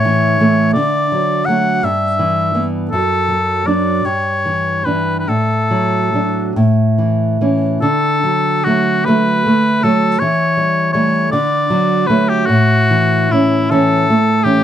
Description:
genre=romantic duo for oboe and classical guitar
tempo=46-57 BPM (dotted quarters)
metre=6/8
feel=rubato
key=D major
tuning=A4 = 441 Hz
part: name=clear oboe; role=melody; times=0.0-14.6 s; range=E4 to F#5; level=-16 LUFS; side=left 2 dB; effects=none
part: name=nylon-string guitar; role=accompaniment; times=0.0-14.6 s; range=F#2 to D4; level=-14 LUFS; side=right 1 dB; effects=none
room=light reverb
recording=close, detailed microphones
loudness=-12 LUFS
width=side -10 dB against mid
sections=0.0-7.8 A section; 7.8-14.6 B section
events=none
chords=0.0 A; 0.7 D; 1.8 Em/G; 2.9 D/F#; 4.1 Em7/G; 5.3 D/A; 6.6 A; 7.8 D; 10.2 A7/E; 11.3 D; 12.5 A

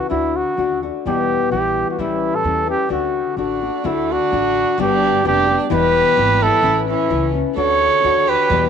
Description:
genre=mexican folk, mariachi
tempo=129 BPM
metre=2/4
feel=rubato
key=D major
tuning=A4 = 437 Hz
part: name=mellow trumpet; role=melody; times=0.0-8.7 s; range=E4 to C#5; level=-17 LUFS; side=right 2 dB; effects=none
part: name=nylon-string guitar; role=accompaniment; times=0.0-8.7 s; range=E2 to G4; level=-21 LUFS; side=left 11 dB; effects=none
part: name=upright bass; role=bass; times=0.1-8.7 s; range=E1 to E2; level=-27 LUFS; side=right 2 dB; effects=none
part: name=dark violin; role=second line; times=3.4-8.7 s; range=A3 to A4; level=-23 LUFS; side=right 12 dB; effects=none
room=moderate plate reverb, RT60 2.8 s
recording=1960s-style stereo with parts hard left and right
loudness=-15 LUFS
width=side -7 dB against mid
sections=0.0-3.9 A section; 3.9-8.7 A section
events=none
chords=0.1 D; 1.1 Em; 2.0 A7; 2.9 D; 4.8 G; 5.7 Em; 6.6 A; 7.6 D

